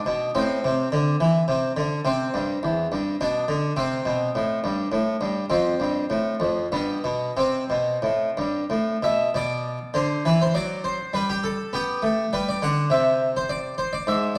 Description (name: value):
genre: classical, baroque-style suite movement for harpsichord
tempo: 90-108 BPM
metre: 3/4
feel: rubato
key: C major, G major from 9.3 s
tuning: A4 = 442 Hz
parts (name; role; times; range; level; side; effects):
- harpsichord; solo; 0.0-14.4 s; E2 to F#5; -24 LUFS; equal; none
room: wet recital hall reverb, RT60 1.4 s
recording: dark, warm production, vinyl crackle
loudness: -24 LUFS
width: mono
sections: 0.0-9.3 A section; 9.3-14.4 A section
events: none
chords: 0.3 Am; 2.0 C; 3.2 Bm; 3.8 C5; 5.5 F; 6.7 G; 7.4 C5; 9.3 Bmadd11; 10.5 N.C.; 11.1 G; 12.9 N.C.